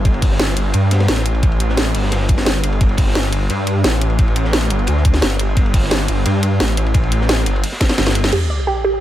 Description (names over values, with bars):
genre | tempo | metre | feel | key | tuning
dark technical drum and bass | 174 BPM | 4/4 | straight | unclear | A4 = 440 Hz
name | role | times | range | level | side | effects
wide detuned saw bass | bass | 0.0-8.3 s | G1 to G2 | -16 LUFS | equal | chorus, overdrive
crunchy breakbeat drum kit | drums | 0.1-8.3 s | hi-hat, ride cymbal, snare drum | -27 LUFS | equal | high-pass filter on cymbals, high-pass filter on hats, high-pass filter on snare, high-pass filter on room
drum and bass drum kit | drums | 0.1-8.4 s | crash cymbal, hi-hat, snare drum | -19 LUFS | equal | none
electronic kick drum | drums | 0.1-7.9 s | none | -15 LUFS | equal | none
dark analog pad | sustained chords | 9.0 s | none | barely audible | none | none
warbly dusty pluck | arpeggios | 8.3-8.9 s | G4 to D5 | -18 LUFS | right 4 dB | chorus, sidechain pumping, dub echo
sub drop | sound effects | 8.3-9.0 s | none | -20 LUFS | equal | none
room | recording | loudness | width
small room reverb | none | -14 LUFS | side -13 dB against mid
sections
0.0-8.3 A section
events
drum fill 7.8-8.3; band accent 8.2; impact 8.3-9.0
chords
0.0 G5